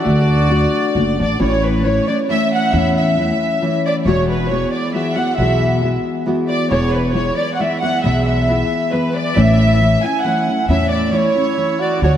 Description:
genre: mexican folk, mariachi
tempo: 136 BPM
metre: 3/4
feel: straight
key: A major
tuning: A4 = 440 Hz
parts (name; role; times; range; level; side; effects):
- warm studio violin section; melody; 0.0-12.1 s; B4 to G#5; -19 LUFS; right 1 dB; ping-pong delay
- mellow trumpet; second line; 0.0-1.2, 11.1-12.1 s; E4 to F#4; -25 LUFS; right 2 dB; ping-pong delay
- nylon-string guitar; accompaniment; 0.0-12.2 s; E2 to F#4; -18 LUFS; left 1 dB; wide subtle chorus
- upright bass; bass; 0.1-12.2 s; E1 to E2; -17 LUFS; equal; none
room: wet lush hall reverb, RT60 2.8 s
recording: dreamy mix soaked in reverb, vinyl crackle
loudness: -14 LUFS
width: side -10 dB against mid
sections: 0.0-1.4 A section; 1.4-12.2 B section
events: none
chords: 0.1 D; 1.4 A; 4.1 Eadd9; 6.7 E; 9.4 A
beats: | 0.07 0.51 0.96 | 1.41 1.85 2.29 | 2.73 3.17 3.62 | 4.05 4.50 4.94 | 5.38 5.82 6.27 | 6.71 7.16 7.60 | 8.04 8.49 8.93 | 9.37 9.80 10.24 | 10.68 11.13 11.57 | 12.02

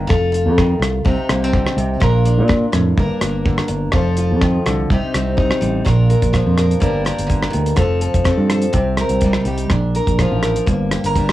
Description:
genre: highlife guitar band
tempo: 125 BPM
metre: 4/4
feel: straight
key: Bb major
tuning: A4 = 441 Hz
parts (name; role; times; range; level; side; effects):
- picked steel-string acoustic guitar; accompaniment; 0.0-11.3 s; G2 to Bb4; -19 LUFS; left 1 dB; cassette tape
- fingered electric bass; bass; 0.0-11.3 s; F1 to Bb2; -18 LUFS; right 1 dB; none
- damped 70s drum kit; drums; 0.1-11.3 s; hi-hat, kick drum, rim click; -19 LUFS; equal; cassette tape
room: light reverb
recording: home recording on cassette, small room ambience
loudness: -14 LUFS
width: side -14 dB against mid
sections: 0.0-5.9 A section; 5.9-11.3 B section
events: none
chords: 0.1 F; 1.1 Cm; 2.0 Bb; 3.0 Gm; 3.9 F; 4.9 Cm; 5.9 Bb; 6.8 Gm; 7.8 F; 8.7 Cm; 9.7 Bb; 10.7 Gm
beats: | 0.11 0.59 1.06 1.54 | 2.02 2.50 2.98 3.46 | 3.94 4.42 4.90 5.38 | 5.86 6.34 6.82 7.30 | 7.78 8.26 8.74 9.23 | 9.71 10.19 10.67 11.15

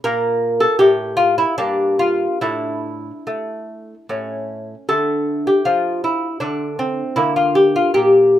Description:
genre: classical, baroque-style dance for lute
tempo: 70-81 BPM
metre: 3/4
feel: rubato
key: D minor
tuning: A4 = 438 Hz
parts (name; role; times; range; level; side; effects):
- lute; solo; 0.0-8.4 s; G2 to Bb4; -15 LUFS; left 1 dB; none
room: light reverb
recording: minimal, uncompressed stereo recording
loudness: -16 LUFS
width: side -12 dB against mid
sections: 0.0-4.9 A section; 4.9-8.4 A section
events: none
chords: 0.0 Gm13; 1.6 Gm7; 2.4 Asus4; 4.1 A; 4.9 Dm; 6.4 Amadd11/D; 7.2 Gm13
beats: | 0.04 0.80 1.60 | 2.44 3.29 4.11 | 4.91 5.67 6.42 | 7.18 7.94

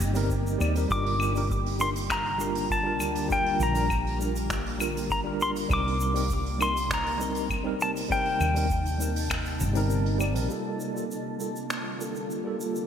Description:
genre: sunset chillout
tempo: 100 BPM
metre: 4/4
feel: straight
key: G minor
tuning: A4 = 440 Hz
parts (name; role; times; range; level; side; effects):
- shimmering ambient pad; sustained chords; 0.0-12.9 s; C3 to A5; -34 LUFS; equal; chorus, built-in reverb
- woody fretless electric bass; bass; 0.0-10.5 s; G1 to Eb2; -29 LUFS; equal; lush chorus
- jazz brush drum kit; drums; 0.0-12.9 s; claves, finger snaps, hi-hat, shaker; -35 LUFS; equal; gated reverb
- tine electric piano; accompaniment; 0.1-12.9 s; G3 to D5; -32 LUFS; right 1 dB; overdrive, fast stereo tremolo, auto-pan, digital delay
- electronic kick drum; drums; 0.3-9.4 s; none; -34 LUFS; equal; none
- pedal steel guitar; melody; 0.9-9.9 s; G5 to D6; -29 LUFS; left 1 dB; vintage 12-bit sampler grit, digital delay
room: moderate lush hall reverb, RT60 3.2 s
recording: bright 1980s-style digital production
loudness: -25 LUFS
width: side -8 dB against mid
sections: 0.0-10.5 A section; 10.5-12.9 B section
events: kick drops out 9.9-10.5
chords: 0.0 Cm7; 0.9 Gm7; 5.7 Cm7; 10.5 Gm9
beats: 0.30 | 0.90 1.50 2.10 2.70 | 3.30 3.90 4.50 5.10 | 5.70 6.30 6.90 7.50 | 8.10 8.70 9.30 9.90 | 10.50 11.10 11.70 12.30

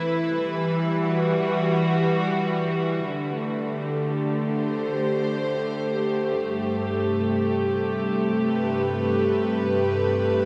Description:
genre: ambient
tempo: free time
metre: none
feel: none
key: unclear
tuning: A4 = 440 Hz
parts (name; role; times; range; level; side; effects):
- warm studio string section; solo; 0.0-10.5 s; G2 to C5; -24 LUFS; equal; diffuse ambient delay
room: wet huge ambient reverb, RT60 8.1 s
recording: cassette tape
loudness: -24 LUFS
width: mono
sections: 0.0-6.4 A section; 6.4-10.5 B section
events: none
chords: 0.0 Emadd9; 3.1 D7sus4; 6.4 Am9/G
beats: free time

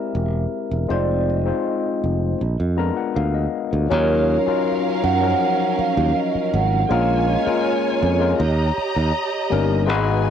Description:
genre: soul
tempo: 80 BPM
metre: 4/4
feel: straight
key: Eb minor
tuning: A4 = 442 Hz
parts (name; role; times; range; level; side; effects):
- vibraphone with soft mallets; melody; 0.0-9.5 s; Db5 to Gb5; -24 LUFS; right 10 dB; cassette tape, analog delay
- barky tine electric piano; accompaniment; 0.0-10.3 s; F3 to Bb5; -22 LUFS; left 9 dB; overdrive, cassette tape
- modern bright fingered electric bass; bass; 0.1-10.3 s; E1 to Gb2; -20 LUFS; right 1 dB; transformer saturation
- warm studio string section; second line; 3.9-10.3 s; Db4 to Bb5; -26 LUFS; right 1 dB; cassette tape
room: light reverb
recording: home recording on cassette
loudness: -18 LUFS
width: side -8 dB against mid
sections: 0.0-3.9 A section; 3.9-10.3 B section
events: tine electric piano fill 2.4-3.9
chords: 0.0 C7b13; 0.9 Fm7; 2.4 Bb7b9; 3.9 Ebm9; 6.9 Bbm7; 8.4 Eb7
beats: 0.15 | 0.90 1.65 2.40 3.15 | 3.90 4.65 5.40 6.15 | 6.90 7.65 8.39 9.14 | 9.89

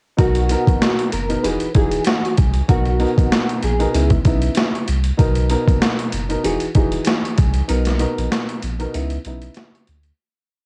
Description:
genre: hip hop, boom-bap hip-hop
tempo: 96 BPM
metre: 4/4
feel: swing 55% on 16ths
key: B major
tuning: A4 = 438 Hz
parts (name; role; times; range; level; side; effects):
- mellow electric guitar; melody; 0.2-4.1 s; F#4 to B4; -26 LUFS; equal; ensemble chorus, high-pass filter, low-pass filter, cassette tape
- dark grand piano; accompaniment; 0.2-9.8 s; B2 to A#4; -25 LUFS; equal; high-pass filter, low-pass filter
- saturated sub bass; bass; 0.2-10.1 s; E1 to D2; -23 LUFS; equal; none
- boom bap sampler-style drum kit; drums; 0.2-10.2 s; hi-hat, kick drum, snare drum; -21 LUFS; equal; none
room: little or no reverb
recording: home recording on cassette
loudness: -18 LUFS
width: mono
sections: 0.2-10.2 verse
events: break 7.7-10.2; fade-out 7.7-10.2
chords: 0.2 Bmaj7; 1.4 Emaj9; 2.7 Bmaj7; 3.9 C#m9; 5.2 Bmaj7; 6.4 Emaj9; 7.7 Bmaj7; 8.9 C#m9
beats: | 0.19 0.81 1.44 2.06 | 2.69 3.31 3.94 4.56 | 5.19 5.81 6.44 7.06 | 7.69 8.31 8.94 9.56

